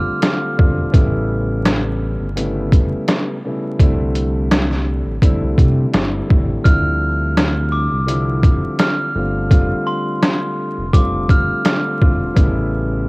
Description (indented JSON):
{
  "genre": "hip hop, boom-bap hip-hop",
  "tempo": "84 BPM",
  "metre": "4/4",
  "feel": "swing 55% on 16ths",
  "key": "D dorian",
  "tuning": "A4 = 440 Hz",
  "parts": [
    { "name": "glockenspiel with hard plastic mallets", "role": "melody", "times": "0.0-0.9, 6.6-12.3 s", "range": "C6 to F6", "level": "-23 LUFS", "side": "equal", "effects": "high-pass filter, low-pass filter, cassette tape" },
    { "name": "dark baby grand piano", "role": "accompaniment", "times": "0.0-13.1 s", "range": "C#3 to F4", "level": "-22 LUFS", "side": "equal", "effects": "cassette tape, high-pass filter, low-pass filter" },
    { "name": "trip hop sampler-style drum kit", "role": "drums", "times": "0.2-12.5 s", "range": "hi-hat, kick drum, snare drum", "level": "-14 LUFS", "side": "equal", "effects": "cassette tape" },
    { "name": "smooth gliding synth bass", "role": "bass", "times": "0.6-13.1 s", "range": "E1 to C3", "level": "-20 LUFS", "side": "equal", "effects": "none" }
  ],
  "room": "digital ambience",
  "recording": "home recording on cassette, vinyl crackle",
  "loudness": "-14 LUFS",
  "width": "side -27 dB against mid",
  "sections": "0.0-13.1 A section",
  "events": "none",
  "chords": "0.0 G9sus4; 0.9 A9; 3.8 C69; 6.7 Dm11; 9.2 G9sus4; 12.4 A9",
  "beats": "0.22 | 0.94 1.65 2.37 3.08 | 3.79 4.51 5.22 5.94 | 6.65 7.37 8.08 8.79 | 9.51 10.22 10.94 11.65 | 12.37 13.08"
}